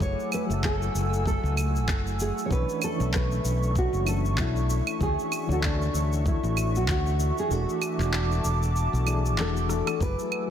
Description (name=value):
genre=sunset chillout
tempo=96 BPM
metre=4/4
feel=swing 57% on 16ths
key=unclear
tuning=A4 = 439 Hz
part: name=nylon-string guitar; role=melody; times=0.0-10.5 s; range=D4 to C#5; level=-31 LUFS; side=equal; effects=ping-pong delay, shimmer reverb
part: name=soft electric-piano-like synth keys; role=accompaniment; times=0.0-10.5 s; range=E3 to C#5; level=-33 LUFS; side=moving between left 8 dB and right 8 dB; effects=chorus, tremolo, auto-pan, ping-pong delay, shimmer reverb
part: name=airy breathy pad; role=sustained chords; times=0.0-10.5 s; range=A3 to E6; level=-33 LUFS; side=right 1 dB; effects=chorus, shimmer reverb
part: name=fretless electric bass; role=bass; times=0.0-10.1 s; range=E1 to D2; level=-26 LUFS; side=equal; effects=none
part: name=electronic cabasa, claves, handclaps and rim click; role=drums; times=0.0-10.5 s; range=none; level=-34 LUFS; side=right 1 dB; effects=none
part: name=electronic kick drum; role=drums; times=0.0-10.2 s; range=none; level=-28 LUFS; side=equal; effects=none
room=light reverb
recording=dense, heavily limited modern master, faint mains hum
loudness=-24 LUFS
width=side -9 dB against mid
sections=0.0-10.0 A section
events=kick drops out 7.5-10.0; drum fill 9.7-10.0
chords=0.0 F#m9; 2.5 Bm11; 5.0 Dmaj9; 7.5 E9sus4